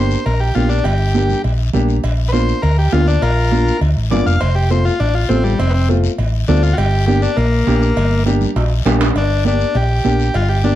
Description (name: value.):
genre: latin, cumbia.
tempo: 202 BPM.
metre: 4/4.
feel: straight.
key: G minor.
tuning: A4 = 440 Hz.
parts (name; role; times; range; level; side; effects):
combo organ; melody; 0.0-10.8 s; G3 to F5; -19 LUFS; left 1 dB; slapback echo.
clear upright piano; accompaniment; 0.0-10.8 s; A3 to G4; -21 LUFS; left 1 dB; none.
hollow-body short-scale fingered electric bass; bass; 0.0-10.8 s; F1 to D2; -15 LUFS; equal; none.
guiro; percussion; 0.1-10.8 s; none; -33 LUFS; left 8 dB; none.
congas; percussion; 0.3-10.8 s; none; -22 LUFS; right 5 dB; none.
cowbell and timbales; percussion; 0.3-10.5 s; none; -26 LUFS; right 3 dB; none.
room: light reverb.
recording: dark, warm production.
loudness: -13 LUFS.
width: side -13 dB against mid.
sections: 0.0-9.2 A section; 9.2-10.8 B section.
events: transistor combo organ solo 0.0-9.2; drum fill 8.6-9.2.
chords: 0.0 Gm; 2.0 Bb; 4.4 F; 6.8 Gm.